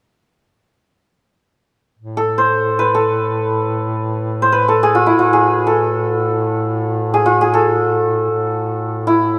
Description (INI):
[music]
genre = Persian modal ensemble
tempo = free time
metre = none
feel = none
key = A avaz esfahan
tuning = A4 = 441 Hz
[part]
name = warm duduk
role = drone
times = 2.0-9.4 s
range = A2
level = -24 LUFS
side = equal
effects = none
[part]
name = santur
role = melody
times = 2.2-9.4 s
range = E4 to C5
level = -17 LUFS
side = equal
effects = none
[sound]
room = moderate concert hall reverb, RT60 2.1 s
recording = close, detailed microphones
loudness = -16 LUFS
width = mono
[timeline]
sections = 2.0-9.4 A section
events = none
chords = none